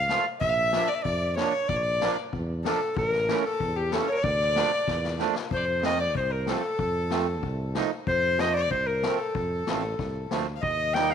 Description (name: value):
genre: klezmer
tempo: 94 BPM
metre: 2/4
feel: straight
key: D harmonic minor, F mixolydian from 5.5 s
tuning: A4 = 441 Hz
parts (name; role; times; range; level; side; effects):
- clear clarinet; melody; 0.0-11.1 s; G4 to G5; -27 LUFS; equal; none
- clear violin; second line; 0.0-11.1 s; G4 to G5; -34 LUFS; left 10 dB; none
- mellow tuba; bass; 0.0-11.1 s; A1 to F2; -32 LUFS; equal; none
- accordion; accompaniment; 0.1-11.1 s; E3 to F4; -32 LUFS; right 12 dB; none
- street-band drum kit; drums; 0.1-11.1 s; kick drum, snare drum; -33 LUFS; left 6 dB; none
room: moderate plate reverb, RT60 2.3 s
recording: 1960s-style stereo with parts hard left and right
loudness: -24 LUFS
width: side -8 dB against mid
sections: 0.0-5.5 A section; 5.5-11.1 B section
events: drum fill 4.9-5.5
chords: 0.4 Bb; 3.0 A; 4.2 Dm; 5.5 F; 10.6 Eb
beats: | 0.41 1.05 | 1.68 2.32 | 2.96 3.60 | 4.23 4.87 | 5.51 6.15 | 6.79 7.43 | 8.07 8.71 | 9.35 9.99 | 10.63